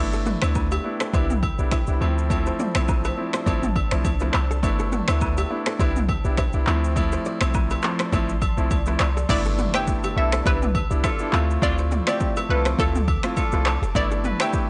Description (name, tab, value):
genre	afrobeats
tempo	103 BPM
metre	4/4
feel	swing 55% on 16ths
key	G mixolydian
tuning	A4 = 440 Hz
part	clear grand piano	accompaniment	0.0-14.7 s	F3 to F4	-30 LUFS	equal	none
part	ethereal airy pad	sustained chords	0.8-14.7 s	F3 to D6	-39 LUFS	equal	none
part	clean 808-style bass	bass	0.0-14.3 s	F1 to D2	-26 LUFS	equal	none
part	kora	riff	0.1-14.7 s	G4 to E5	-37 LUFS	equal	none
part	deep house drum kit	drums	0.1-14.7 s	crash cymbal, finger snaps, handclaps, kick drum, rim click, shaker, toms	-27 LUFS	equal	overdrive
part	agogo bells and woodblock	percussion	0.4-14.5 s	none	-36 LUFS	equal	none
part	analog pluck	melody	9.3-14.7 s	A4 to G5	-30 LUFS	equal	chorus
part	mellow horn section	second line	9.3-14.6 s	A3 to A4	-34 LUFS	equal	none
part	impact	sound effects	9.3-11.6 s	none	-37 LUFS	equal	none
room	light reverb, studio reverb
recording	dry, gritty hardware recording, transformer saturation, cassette tape, nothing above 10.9 kHz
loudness	-22 LUFS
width	mono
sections	0.0-9.3 A section; 9.3-14.7 B section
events	impact 9.3-11.6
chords	0.0 G69; 1.1 Cmaj7; 2.0 Dm7; 4.6 G69; 5.8 Cmaj7; 6.7 Dm7; 9.3 G69; 10.5 Cmaj7; 11.3 Dm7; 14.0 G69